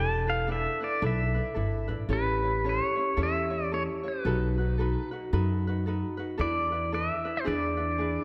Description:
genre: Hawaiian.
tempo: 112 BPM.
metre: 4/4.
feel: swing 61% on 8ths.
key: unclear.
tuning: A4 = 440 Hz.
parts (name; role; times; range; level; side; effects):
pedal steel guitar; melody; 0.0-8.2 s; B4 to A5; -33 LUFS; equal; tape echo.
vibraphone with soft mallets; second line; 0.0-8.2 s; D4 to A4; -37 LUFS; equal; tape echo.
ukulele; accompaniment; 0.0-8.2 s; C#4 to C#5; -38 LUFS; equal; none.
upright bass; bass; 0.0-8.2 s; E1 to F#2; -33 LUFS; equal; none.
room: moderate concert hall reverb, RT60 1.9 s.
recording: none.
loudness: -29 LUFS.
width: mono.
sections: 0.0-8.2 A section.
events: none.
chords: 0.0 E7sus4; 2.1 A; 4.2 B7; 6.4 E7sus4; 7.5 E7.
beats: 0.49 1.03 1.56 | 2.10 2.64 3.17 3.71 | 4.25 4.78 5.32 5.85 | 6.39 6.93 7.46 8.00.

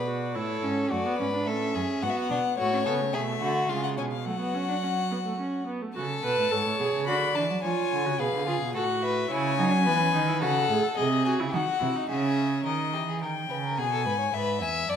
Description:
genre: classical, baroque-style fugue for string quartet.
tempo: 108 BPM.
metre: 3/4.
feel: straight.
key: F# minor.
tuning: A4 = 440 Hz.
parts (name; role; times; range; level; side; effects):
rich violin; melody; 0.0-15.0 s; C#5 to B5; -30 LUFS; left 9 dB; none.
rich violin; second line; 0.0-15.0 s; C#4 to E5; -31 LUFS; left 2 dB; none.
warm viola; accompaniment; 0.0-12.7 s; G#3 to B4; -30 LUFS; right 3 dB; none.
warm cello; bass; 0.0-15.0 s; E2 to F#3; -30 LUFS; right 4 dB; none.
room: wet recital hall reverb, RT60 1.5 s.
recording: none.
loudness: -24 LUFS.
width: side -8 dB against mid.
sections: 0.0-6.0 A section; 6.0-12.7 B section; 12.7-15.0 A section.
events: none.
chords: 0.4 Amaj7; 0.9 D/F#; 2.0 G#m7 (rootless); 2.6 F#m/A; 3.1 Bm; 3.7 C#7; 4.3 F#m; 6.0 F#m (rootless); 7.1 Bm/D; 7.6 C#7; 8.8 F#m/A; 9.3 C#m; 10.4 F#m/C#; 11.0 G#7/B#; 12.1 C#m; 12.7 D#7; 13.8 G#m/B; 14.3 E.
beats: 0.35 | 0.91 1.47 2.02 | 2.58 3.13 3.69 | 4.25 4.82 5.39 | 5.96 6.52 7.08 | 7.64 8.20 8.75 | 9.31 9.86 10.42 | 10.97 11.53 12.09 | 12.66 13.22 13.78 | 14.34 14.89.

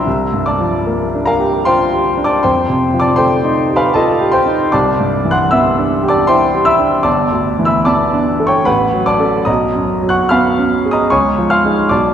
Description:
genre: classical, impressionist solo piano.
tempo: 72-80 BPM.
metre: 3/4.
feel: rubato.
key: unclear.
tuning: A4 = 440 Hz.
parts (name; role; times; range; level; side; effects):
clear baby grand piano; solo; 0.0-12.1 s; G1 to F#6; -11 LUFS; equal; none.
room: wet concert hall reverb, RT60 2.4 s.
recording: heard from further back in the room.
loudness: -11 LUFS.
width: side -9 dB against mid.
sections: 0.0-12.1 A section.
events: none.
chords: 0.1 A#69/B#; 2.4 F9; 4.7 Cmaj9; 7.1 G69; 8.7 A69; 9.5 B69; 11.1 C#add9.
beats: | 0.06 0.86 1.66 | 2.44 3.19 3.96 | 4.73 5.52 6.28 | 7.06 7.86 8.67 | 9.48 10.30 11.11 | 11.91.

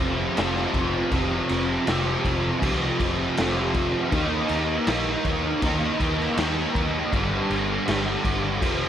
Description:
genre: rock, shoegaze and dream pop.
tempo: 80 BPM.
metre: 4/4.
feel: straight.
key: unclear.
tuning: A4 = 445 Hz.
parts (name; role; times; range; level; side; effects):
thick fuzz guitar; riff; 0.0-8.9 s; F2 to Eb4; -24 LUFS; equal; distortion, ensemble chorus.
vintage muted fingered electric bass; bass; 0.0-8.9 s; F1 to Eb2; -30 LUFS; equal; none.
raw garage drum kit; drums; 0.4-8.8 s; crash cymbal, kick drum, snare drum; -26 LUFS; equal; none.
room: light reverb, small room ambience.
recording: none.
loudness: -21 LUFS.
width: side -10 dB against mid.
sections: 0.0-8.9 A section.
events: none.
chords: 0.0 F5; 4.1 Eb5; 7.1 G5.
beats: 0.37 | 1.13 1.88 2.63 3.38 | 4.13 4.88 5.63 6.38 | 7.13 7.88 8.62.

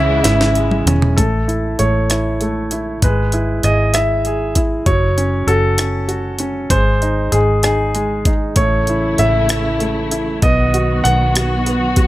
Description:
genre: six-eight pop ballad.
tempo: 65 BPM (dotted quarters).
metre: 6/8.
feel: straight.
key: unclear.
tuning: A4 = 440 Hz.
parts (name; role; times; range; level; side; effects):
clear concert grand piano; melody; 0.0-12.1 s; G#4 to F#5; -19 LUFS; equal; none.
clear baby grand piano; accompaniment; 0.0-12.1 s; C#3 to G#4; -21 LUFS; right 1 dB; none.
muted studio string section; sustained chords; 0.0-1.2, 8.6-12.1 s; C#3 to F#4; -22 LUFS; left 1 dB; none.
vintage muted fingered electric bass; bass; 0.0-12.1 s; E1 to C#2; -18 LUFS; equal; none.
jungle sampler-style drum kit; drums; 0.2-12.1 s; hi-hat, kick drum, rim click, snare drum, toms; -18 LUFS; equal; none.
room: light reverb, small room reverb.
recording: none.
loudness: -14 LUFS.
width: side -16 dB against mid.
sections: 0.0-1.2 A section; 1.2-12.1 B section.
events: drum fill 0.3-1.2.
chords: 0.0 C#m; 1.2 A; 3.0 E/G#; 4.9 F#m; 6.7 G#; 8.6 A; 10.4 B.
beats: 0.25 | 1.18 2.11 | 3.03 3.95 | 4.86 5.78 | 6.71 7.63 | 8.57 9.50 | 10.43 11.35.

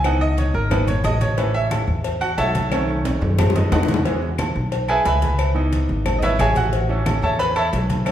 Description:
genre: latin, salsa.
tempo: 180 BPM.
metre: 4/4.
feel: straight.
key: unclear.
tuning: A4 = 441 Hz.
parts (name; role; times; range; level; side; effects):
bright baby grand piano; accompaniment; 0.0-8.1 s; D#3 to B5; -22 LUFS; right 2 dB; none.
upright bass; bass; 0.0-8.1 s; G#1 to F#2; -21 LUFS; equal; none.
agogo bells and timbales; percussion; 0.0-8.1 s; none; -29 LUFS; right 3 dB; none.
claves; percussion; 0.0-8.1 s; none; -36 LUFS; left 6 dB; none.
congas; percussion; 0.0-8.1 s; none; -27 LUFS; equal; none.
cowbell and bongos; percussion; 0.0-8.1 s; none; -28 LUFS; left 4 dB; none.
room: wet recital hall reverb, RT60 1.3 s.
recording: recorded in a church or concert hall.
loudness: -17 LUFS.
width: side -11 dB against mid.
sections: 0.0-8.1 A section.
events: grand piano solo 0.0-8.1; drum fill 2.7-4.1.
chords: 0.0 C#m7; 1.4 A; 2.7 B7; 4.1 E; 5.4 C#m7; 6.7 A.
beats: | 0.04 0.38 0.71 1.05 | 1.38 1.71 2.05 2.38 | 2.72 3.05 3.38 3.72 | 4.05 4.39 4.72 5.06 | 5.39 5.72 6.06 6.39 | 6.73 7.06 7.40 7.73 | 8.07.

